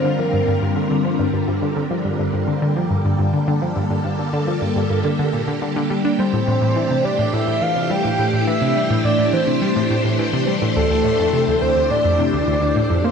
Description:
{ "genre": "ambient, sequencer-driven space music", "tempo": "105 BPM", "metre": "4/4", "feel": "straight", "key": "G dorian", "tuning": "A4 = 441 Hz", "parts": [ { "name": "soft octave-layered synth lead", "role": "melody", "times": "0.0-1.0, 6.2-13.1 s", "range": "A4 to G5", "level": "-21 LUFS", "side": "equal", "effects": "chorus, ping-pong delay" }, { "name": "phased string machine", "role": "sustained chords", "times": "0.0-13.1 s", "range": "D3 to C5", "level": "-21 LUFS", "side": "left 1 dB", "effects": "ensemble chorus, phaser" }, { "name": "analog pluck", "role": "riff", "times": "0.0-13.1 s", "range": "D2 to D4", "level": "-21 LUFS", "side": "equal", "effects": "chorus, phaser, ping-pong delay" } ], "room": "moderate plate reverb, RT60 3.8 s", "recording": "none", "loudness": "-16 LUFS", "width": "side -6 dB against mid", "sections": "0.0-13.1 A section", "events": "none", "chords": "0.0 Gm7; 6.2 Am7; 10.8 Dm9", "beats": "0.48 1.05 | 1.62 2.19 2.76 3.33 | 3.90 4.48 5.05 5.62 | 6.19 6.76 7.33 7.90 | 8.48 9.05 9.62 10.19 | 10.76 11.33 11.90 12.48 | 13.05" }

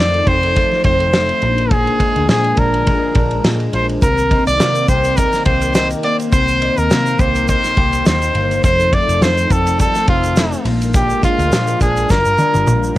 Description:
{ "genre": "indie pop, bedroom pop", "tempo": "104 BPM", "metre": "4/4", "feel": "swing 55% on 16ths", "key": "C minor", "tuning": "A4 = 440 Hz", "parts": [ { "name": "clear trumpet", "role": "melody", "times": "0.0-13.0 s", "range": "F4 to D5", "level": "-16 LUFS", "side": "equal", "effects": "wide subtle chorus, cassette tape, tape echo" }, { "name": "electric guitar through a small old amp", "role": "accompaniment", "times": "0.0-13.0 s", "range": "F2 to G4", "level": "-22 LUFS", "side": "left 3 dB", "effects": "wide subtle chorus, warbly pitch drift, cassette tape" }, { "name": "string machine, cellos", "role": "sustained chords", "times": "0.0-13.0 s", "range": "Eb3 to Bb4", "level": "-25 LUFS", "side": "equal", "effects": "ensemble chorus, cassette tape" }, { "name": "vintage muted picked electric bass", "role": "bass", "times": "0.0-13.0 s", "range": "F1 to C3", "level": "-20 LUFS", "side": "equal", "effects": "none" }, { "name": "loose indie drum kit", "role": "drums", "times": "0.1-12.8 s", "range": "hi-hat, kick drum, ride cymbal, snare drum, toms", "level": "-17 LUFS", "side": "equal", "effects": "cassette tape" }, { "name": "egg shaker", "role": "percussion", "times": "4.0-13.0 s", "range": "none", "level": "-33 LUFS", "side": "right 4 dB", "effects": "none" } ], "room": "moderate booth ambience, RT60 0.2 s", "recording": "home recording on cassette", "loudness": "-12 LUFS", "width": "side -15 dB against mid", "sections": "0.0-13.0 A section", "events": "drum fill 12.1-13.0", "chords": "0.0 F7; 1.4 Bb7; 4.0 Cm7; 8.6 F7; 10.7 Bb7; 12.1 Gm7", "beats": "0.56 1.13 | 1.71 2.29 2.87 3.44 | 4.02 4.60 5.17 5.75 | 6.33 6.90 7.48 8.06 | 8.63 9.21 9.79 10.37 | 10.94 11.52 12.10 12.67" }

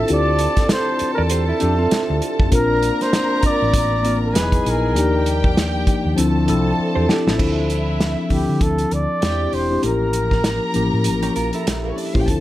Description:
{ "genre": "lush 1970s-style soul", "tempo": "99 BPM", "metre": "4/4", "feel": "swing 58% on 16ths", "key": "D minor", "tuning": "A4 = 440 Hz", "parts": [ { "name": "breathy flugelhorn", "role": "melody", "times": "0.0-11.0 s", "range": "G4 to D5", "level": "-22 LUFS", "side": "right 1 dB", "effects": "none" }, { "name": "dark studio violin section", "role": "second line", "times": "0.0-12.4 s", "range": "Bb3 to Bb5", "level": "-27 LUFS", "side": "equal", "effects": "none" }, { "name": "mellow tine electric piano", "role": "accompaniment", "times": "0.0-12.4 s", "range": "F3 to E5", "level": "-22 LUFS", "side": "left 3 dB", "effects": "phaser" }, { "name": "mellow French horn section", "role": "sustained chords", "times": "0.0-7.4 s", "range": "D3 to D#5", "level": "-30 LUFS", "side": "equal", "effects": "none" }, { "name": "hollow-body short-scale fingered electric bass", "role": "bass", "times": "0.0-12.4 s", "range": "E1 to D3", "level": "-22 LUFS", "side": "equal", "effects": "none" }, { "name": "warm soul drum kit", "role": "drums", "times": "0.1-12.4 s", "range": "crash cymbal, hi-hat, kick drum, snare drum", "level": "-21 LUFS", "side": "equal", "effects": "none" }, { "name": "mellow electric guitar", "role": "riff", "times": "1.2-2.5, 7.0-7.6, 11.2-12.2 s", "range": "C4 to D5", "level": "-27 LUFS", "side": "right 6 dB", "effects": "none" } ], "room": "light reverb", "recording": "none", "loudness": "-16 LUFS", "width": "side -14 dB against mid", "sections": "0.0-7.4 A section; 7.4-12.4 B section", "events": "drum fill 6.8-7.4", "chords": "0.0 Dm7; 2.5 Bbmaj7; 4.4 Emaj7; 5.0 Ebmaj7; 6.2 Dm7; 7.4 Dm9; 9.2 E7alt; 9.8 A7b9b13", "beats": "| 0.09 0.70 1.31 1.92 | 2.53 3.13 3.74 4.35 | 4.96 5.57 6.17 6.78 | 7.39 8.00 8.61 9.22 | 9.83 10.44 11.05 11.66 | 12.28" }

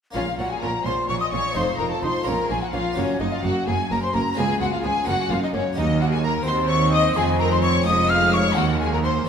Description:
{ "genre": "classical, baroque-style concerto movement with solo episodes", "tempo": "85 BPM (dotted quarters)", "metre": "6/8", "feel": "straight", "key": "Bb minor", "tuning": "A4 = 441 Hz", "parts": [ { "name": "rich chamber violin section", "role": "melody", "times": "0.1-9.1 s", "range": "Db5 to F6", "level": "-28 LUFS", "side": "left 3 dB", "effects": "none" }, { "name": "harpsichord", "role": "accompaniment", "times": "0.1-9.3 s", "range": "Db2 to Ab4", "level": "-31 LUFS", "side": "left 1 dB", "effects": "none" }, { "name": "clear chamber double bass section", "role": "bass", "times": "0.1-9.3 s", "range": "F1 to Eb2", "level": "-28 LUFS", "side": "right 3 dB", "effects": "none" }, { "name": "mellow hollow concert flute", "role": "melody", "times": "0.2-9.3 s", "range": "Db5 to F6", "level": "-26 LUFS", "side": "left 1 dB", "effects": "none" }, { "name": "rich chamber violin section", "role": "second line", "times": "0.2-9.3 s", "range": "Db4 to F5", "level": "-27 LUFS", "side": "left 4 dB", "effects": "none" }, { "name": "rich studio viola section", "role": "accompaniment", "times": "0.2-9.3 s", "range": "Ab3 to Eb4", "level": "-29 LUFS", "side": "right 1 dB", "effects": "none" }, { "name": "rich symphonic cello section", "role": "bass", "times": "0.2-9.3 s", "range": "Db2 to Bb2", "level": "-26 LUFS", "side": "right 2 dB", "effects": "none" } ], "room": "wet concert hall reverb, RT60 2.4 s", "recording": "minimal, uncompressed stereo recording", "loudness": "-19 LUFS", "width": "side -7 dB against mid", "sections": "0.2-9.3 A section", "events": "none", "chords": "0.2 Bbm; 1.6 F7; 2.3 Bbm; 3.0 Gb; 4.4 Db7; 5.1 Gb; 5.8 Ebm; 6.5 Cdim/Eb; 7.2 Fm; 7.9 Db/F; 8.6 Cdim/Eb", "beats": "| 0.15 0.86 | 1.56 2.27 | 2.97 3.67 | 4.38 5.08 | 5.78 6.47 | 7.17 7.87 | 8.57 9.29" }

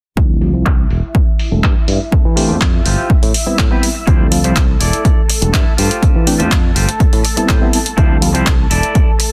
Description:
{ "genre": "filtered disco house", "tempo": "123 BPM", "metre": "4/4", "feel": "straight", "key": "D dorian", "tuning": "A4 = 439 Hz", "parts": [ { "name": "reed electric piano", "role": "accompaniment", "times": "0.2-8.4 s", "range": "F3 to A4", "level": "-21 LUFS", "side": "equal", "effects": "fast tremolo, phaser, sidechain pumping, low-pass filter" }, { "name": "string machine, full ensemble", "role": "sustained chords", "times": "0.2-9.3 s", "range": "A4 to E6", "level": "-28 LUFS", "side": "equal", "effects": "ensemble chorus, sidechain pumping, low-pass filter" }, { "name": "modern bright fingered electric bass", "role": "bass", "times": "0.2-8.8 s", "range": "E1 to E3", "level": "-19 LUFS", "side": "equal", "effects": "sidechain pumping, low-pass filter" }, { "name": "electronic kick drum", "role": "drums", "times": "0.2-9.1 s", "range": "none", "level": "-16 LUFS", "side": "equal", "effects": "none" }, { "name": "punchy analog drum machine", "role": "drums", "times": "0.4-9.3 s", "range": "handclaps, hi-hat", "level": "-22 LUFS", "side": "equal", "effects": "sidechain pumping on hats, low-pass filter on hats, low-pass filter on snare, low-pass filter on room" }, { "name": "clean electric guitar", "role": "riff", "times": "2.4-9.2 s", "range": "C4 to E5", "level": "-25 LUFS", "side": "equal", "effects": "sidechain pumping, low-pass filter" } ], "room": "little or no reverb", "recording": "dense, heavily limited modern master", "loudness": "-13 LUFS", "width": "mono", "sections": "0.2-4.1 A section; 4.1-9.3 B section", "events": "filter sweep on drum 0.2-4.1; filter sweep 0.2-4.1, 4.1-9.3", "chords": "0.2 Dm11; 0.9 Emadd11; 1.9 G7sus4; 3.1 Am9; 4.1 Dm11; 4.8 E7sus4; 5.8 G7sus4; 7.0 Am9; 8.0 Dm11; 8.7 Gsus2/E (rootless)", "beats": "| 0.17 0.66 1.15 1.64 | 2.12 2.61 3.10 3.59 | 4.08 4.56 5.05 5.54 | 6.03 6.51 7.00 7.49 | 7.98 8.47 8.95" }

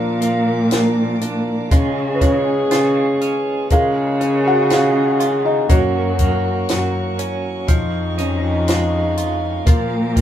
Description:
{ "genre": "acoustic folk-pop ballad", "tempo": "60 BPM", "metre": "4/4", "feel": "straight", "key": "unclear", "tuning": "A4 = 440 Hz", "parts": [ { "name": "felt-muted upright piano", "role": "melody", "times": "0.0-10.2 s", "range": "F3 to Gb5", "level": "-21 LUFS", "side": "left 1 dB", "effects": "none" }, { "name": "warm French horn", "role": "second line", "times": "0.0-10.2 s", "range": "Eb4 to Ab4", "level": "-22 LUFS", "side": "equal", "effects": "none" }, { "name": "warm chamber string section", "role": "sustained chords", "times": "0.0-10.2 s", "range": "Ab4 to D6", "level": "-32 LUFS", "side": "left 1 dB", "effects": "none" }, { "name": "direct-recorded clean electric guitar", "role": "arpeggios", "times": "0.0-10.2 s", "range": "F3 to Gb4", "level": "-26 LUFS", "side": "right 6 dB", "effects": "tremolo" }, { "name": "rich cello", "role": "bass", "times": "0.0-10.2 s", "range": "F2 to Db3", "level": "-21 LUFS", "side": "equal", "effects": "none" }, { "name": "compact cocktail drum kit", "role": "drums", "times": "0.2-10.2 s", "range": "hi-hat, kick drum, snare drum", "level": "-17 LUFS", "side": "equal", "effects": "none" } ], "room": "moderate studio reverb, RT60 0.6 s", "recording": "band playing live in one room", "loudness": "-15 LUFS", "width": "side -10 dB against mid", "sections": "0.0-10.2 A section", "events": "none", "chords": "0.0 Bb; 1.7 Db; 3.7 Bbm7/Db; 5.7 Gb; 7.7 Dbadd9/F; 9.7 Bb", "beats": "0.71 | 1.71 2.71 3.71 4.71 | 5.70 6.69 7.69 8.68 | 9.67" }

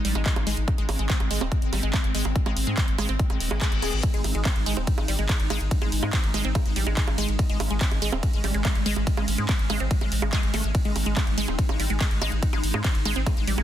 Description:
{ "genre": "psychedelic trance", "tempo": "143 BPM", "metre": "4/4", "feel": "straight", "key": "Ab major", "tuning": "A4 = 440 Hz", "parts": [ { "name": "pulsing gated texture", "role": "sustained chords", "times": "0.0-13.6 s", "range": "Ab3 to Eb4", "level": "-32 LUFS", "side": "right 1 dB", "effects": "chorus, built-in reverb, sidechain pumping" }, { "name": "wide unison pluck", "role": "riff", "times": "0.0-13.6 s", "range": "G3 to Ab4", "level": "-31 LUFS", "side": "moving between left 4 dB and right 4 dB", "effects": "auto-pan, vintage 12-bit sampler grit, sidechain pumping, ping-pong delay" }, { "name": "round analog bass", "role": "bass", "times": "0.0-13.6 s", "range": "Eb1 to Ab2", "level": "-27 LUFS", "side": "equal", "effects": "none" }, { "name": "big-room dance drum kit", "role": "drums", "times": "0.0-13.6 s", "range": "bongos, handclaps, hi-hat, ride cymbal", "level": "-30 LUFS", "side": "right 3 dB", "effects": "studio reverb" }, { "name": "electronic kick drum", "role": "drums", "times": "0.3-13.3 s", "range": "none", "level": "-24 LUFS", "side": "equal", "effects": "studio reverb" }, { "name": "reverse cymbal", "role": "sound effects", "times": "3.4-4.0 s", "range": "none", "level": "-34 LUFS", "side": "left 6 dB", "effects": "none" } ], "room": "little or no reverb", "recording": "dense, heavily limited modern master", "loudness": "-22 LUFS", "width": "side -11 dB against mid", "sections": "0.0-13.6 A section", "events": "reverse cymbal 3.4-4.0", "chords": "0.0 Ab5", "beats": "0.26 | 0.68 1.10 1.52 1.94 | 2.36 2.77 3.19 3.61 | 4.03 4.45 4.87 5.29 | 5.71 6.13 6.55 6.97 | 7.39 7.81 8.23 8.65 | 9.07 9.49 9.91 10.33 | 10.75 11.17 11.59 12.01 | 12.43 12.85 13.27" }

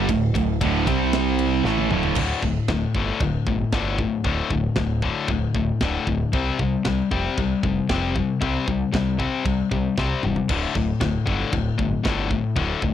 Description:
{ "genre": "heavy metal", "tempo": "115 BPM", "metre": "4/4", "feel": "straight", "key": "unclear", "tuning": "A4 = 440 Hz", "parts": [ { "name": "sludgy distorted guitar", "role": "riff", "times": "0.0-2.2 s", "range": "D2 to C4", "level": "-23 LUFS", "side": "right 16 dB", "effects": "overdrive" }, { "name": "tight distorted guitar", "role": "riff", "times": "0.0-12.9 s", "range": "D2 to C4", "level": "-23 LUFS", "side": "left 5 dB", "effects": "distortion" }, { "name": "growling picked electric bass", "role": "bass", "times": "0.0-12.9 s", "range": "D1 to C2", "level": "-27 LUFS", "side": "right 1 dB", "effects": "overdrive" }, { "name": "tight metal drum kit", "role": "drums", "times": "0.1-12.9 s", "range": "china cymbal, crash cymbal, kick drum, ride cymbal, snare drum, toms", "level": "-27 LUFS", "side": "right 1 dB", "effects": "none" } ], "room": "little or no reverb", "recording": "dry, close 1970s-style studio recording", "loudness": "-20 LUFS", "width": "side -10 dB against mid", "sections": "0.0-2.2 A section; 2.2-12.9 B section", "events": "half time 0.0-2.2; drum fill 1.6-2.2, 10.0-10.5", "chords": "0.0 D5; 0.9 C5; 1.6 D5; 6.3 C5; 10.5 D5", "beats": "| 0.09 0.61 1.13 1.65 | 2.17 2.69 3.21 3.73 | 4.25 4.77 5.29 5.81 | 6.33 6.85 7.37 7.89 | 8.41 8.93 9.45 9.97 | 10.49 11.01 11.53 12.05 | 12.57" }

